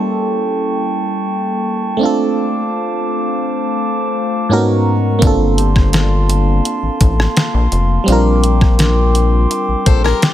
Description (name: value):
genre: contemporary R&B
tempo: 84 BPM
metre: 4/4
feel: straight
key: G minor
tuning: A4 = 440 Hz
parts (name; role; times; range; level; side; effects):
- FM electric piano; accompaniment; 0.0-10.3 s; Ab2 to Bb4; -17 LUFS; right 1 dB; chorus
- glass harmonica; sustained chords; 0.0-10.3 s; Ab3 to D6; -20 LUFS; left 1 dB; none
- rubbery square bass; bass; 5.2-10.1 s; F1 to Bb1; -14 LUFS; left 1 dB; none
- detuned 8-bit digital drum machine; drums; 5.2-10.3 s; hi-hat, kick drum, rim click, snare drum; -14 LUFS; left 1 dB; none
- soft synth bell; texture; 5.6-9.5 s; D4 to D5; -31 LUFS; equal; none
- picked plugged-in swing-style acoustic guitar; arpeggios; 9.9-10.3 s; G4 to C5; -18 LUFS; left 10 dB; none
room: little or no reverb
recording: none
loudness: -12 LUFS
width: side -12 dB against mid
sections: 0.0-10.3 A section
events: none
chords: 0.0 A7b9; 2.0 Dm7/A; 4.5 Abm11; 5.2 Gm11; 8.1 Bb69